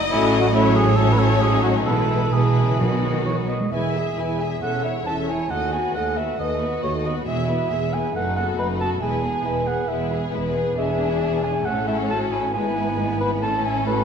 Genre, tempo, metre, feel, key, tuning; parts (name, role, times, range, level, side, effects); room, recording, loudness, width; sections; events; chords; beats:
quick classical-period movement for symphony orchestra; 136 BPM; 4/4; rubato; E major; A4 = 436 Hz
rich studio violin section; melody; 0.0-14.0 s; G#4 to G#5; -30 LUFS; left 5 dB
dark cor anglais; second line; 0.1-14.0 s; E4 to A5; -25 LUFS; right 2 dB
warm studio violin section; second line; 0.1-14.0 s; G#3 to C#5; -29 LUFS; left 4 dB
warm studio viola section; accompaniment; 0.1-14.0 s; D#3 to G#4; -28 LUFS; left 1 dB
dark studio double bass section; bass; 0.1-14.0 s; E1 to D#2; -27 LUFS; right 3 dB
warm studio cello section; bass; 0.1-14.0 s; D#2 to G#3; -26 LUFS; right 2 dB
timpani; percussion; 2.8-3.5 s; B2; -29 LUFS; equal
dark French horn section; sustained chords; 3.7-14.0 s; E4 to B4; -28 LUFS; left 4 dB
wet concert hall reverb, RT60 2.2 s; minimal, uncompressed stereo recording; -19 LUFS; side -7 dB against mid
0.0-3.7 A section; 3.7-14.0 B section
0.1 F#m/A; 1.9 E/B; 2.8 B; 3.7 E; 4.6 A/E; 5.5 B7/D#; 7.3 E; 8.1 B7/F#; 9.0 E; 10.8 E7; 11.7 A; 12.5 E/G#; 13.4 A
| 0.11 0.54 0.98 1.42 | 1.88 2.34 2.81 3.27 | 3.73 4.18 4.63 5.07 | 5.51 5.95 6.39 6.83 | 7.27 7.71 8.15 8.58 | 9.02 9.45 9.89 10.33 | 10.78 11.22 11.66 12.10 | 12.54 12.98 13.43 13.88